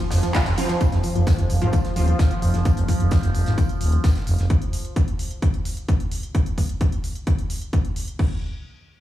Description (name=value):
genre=driving peak-time techno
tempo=130 BPM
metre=4/4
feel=straight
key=F minor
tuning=A4 = 441 Hz
part: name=analog pluck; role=riff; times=0.0-2.6 s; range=F3 to F4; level=-29 LUFS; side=left 1 dB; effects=chorus, overdrive, sidechain pumping, tape echo
part: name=overtone-sweeping drone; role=drone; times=0.0-4.5 s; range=F3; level=-31 LUFS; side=left 1 dB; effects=chorus, built-in reverb, phaser, sidechain pumping
part: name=techno drum kit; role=drums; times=0.0-8.3 s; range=crash cymbal, handclaps, hi-hat, ride cymbal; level=-34 LUFS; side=right 1 dB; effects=none
part: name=growling FM bass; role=bass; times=0.1-4.5 s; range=Eb1 to Ab1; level=-20 LUFS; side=equal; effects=sidechain pumping
part: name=gated 80s drum kit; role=drums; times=0.1-4.5 s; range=hi-hat, snare drum, tambourine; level=-38 LUFS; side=equal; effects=high-pass filter on hats, high-pass filter on snare, high-pass filter on perc, high-pass filter on room
part: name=electronic kick drum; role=drums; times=0.3-8.3 s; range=none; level=-21 LUFS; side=equal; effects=overdrive
part: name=rave stab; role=stabs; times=0.6-2.2 s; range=F3 to F4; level=-30 LUFS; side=right 3 dB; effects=chorus, built-in reverb, sidechain pumping, tape echo
room=small room ambience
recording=played on a big sound system in a bare room, large studio reverb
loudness=-19 LUFS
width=side -13 dB against mid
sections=0.8-8.2 A section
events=band accent 0.3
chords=0.0 F5; 8.2 N.C.